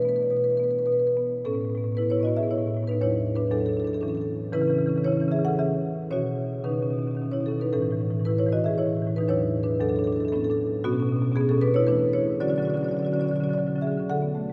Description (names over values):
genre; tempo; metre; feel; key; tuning
classical, contemporary piece for solo marimba; 105-119 BPM; 3/4; rubato; A major, D lydian from 10.8 s; A4 = 437 Hz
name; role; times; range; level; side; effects
marimba with medium mallets; solo; 0.0-14.5 s; E2 to F#5; -25 LUFS; equal; none
room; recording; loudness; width
wet cathedral reverb, RT60 7.4 s; recorded in a church or concert hall; -25 LUFS; mono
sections
0.0-1.4 A section; 1.4-14.1 B section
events
none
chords
0.0 Bm7; 1.4 Aadd9; 3.0 E11; 4.0 A; 4.5 C#m7; 6.1 Badd9; 7.7 A; 9.3 E11; 10.3 Aadd9; 10.8 Bsus2; 11.9 E7sus4; 12.4 Dmaj7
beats
0.32 0.87 | 1.44 1.97 2.48 | 3.00 3.50 4.02 | 4.53 5.04 5.57 | 6.09 6.63 7.17 | 7.71 8.25 8.77 | 9.29 9.80 10.31 | 10.83 11.34 11.87 | 12.42 12.97 13.53 | 14.08